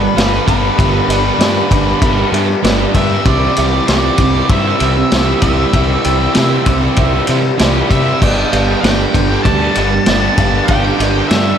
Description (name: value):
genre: classic rock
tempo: 97 BPM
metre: 4/4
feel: straight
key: G major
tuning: A4 = 441 Hz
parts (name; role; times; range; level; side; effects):
- octave-fuzz lead guitar; melody; 0.0-11.6 s; B4 to A5; -19 LUFS; left 1 dB; distortion, slapback echo
- dark upright piano; accompaniment; 0.0-11.6 s; G4 to G5; -22 LUFS; right 3 dB; slapback echo
- bright tonewheel organ; sustained chords; 0.0-11.6 s; C4 to D5; -28 LUFS; left 1 dB; none
- overdriven electric guitar; riff; 0.0-11.6 s; G2 to G4; -21 LUFS; left 10 dB; none
- overdriven electric guitar; riff; 0.0-11.6 s; G2 to G4; -18 LUFS; right 10 dB; slapback echo
- fuzz fingered electric bass; bass; 0.0-11.5 s; G1 to C3; -17 LUFS; left 1 dB; overdrive
- vintage drum kit; drums; 0.2-11.5 s; crash cymbal, kick drum, ride cymbal, snare drum; -16 LUFS; left 1 dB; none
room: moderate concert hall reverb, RT60 2.0 s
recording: big arena sound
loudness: -10 LUFS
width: side -8 dB against mid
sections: 0.0-11.6 A section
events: none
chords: 0.0 G; 3.3 C; 8.2 G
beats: 0.17 | 0.79 1.41 2.03 2.65 | 3.27 3.88 4.50 5.12 | 5.74 6.36 6.98 7.60 | 8.21 8.83 9.45 10.07 | 10.69 11.31